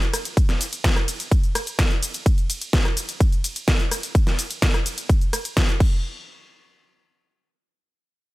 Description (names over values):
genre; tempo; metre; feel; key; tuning
EDM; 127 BPM; 4/4; straight; none; none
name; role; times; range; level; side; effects
pop drum kit; drums; 0.0-5.9 s; cabasa, crash cymbal, hi-hat, ride cymbal, rim click, snare drum; -25 LUFS; equal; overdrive
electronic kick drum; drums; 0.4-5.9 s; none; -19 LUFS; equal; none
room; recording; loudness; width
little or no reverb; none; -19 LUFS; side -19 dB against mid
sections
0.0-6.0 A section; 6.0-7.9 B section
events
drop 0.0-6.0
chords
none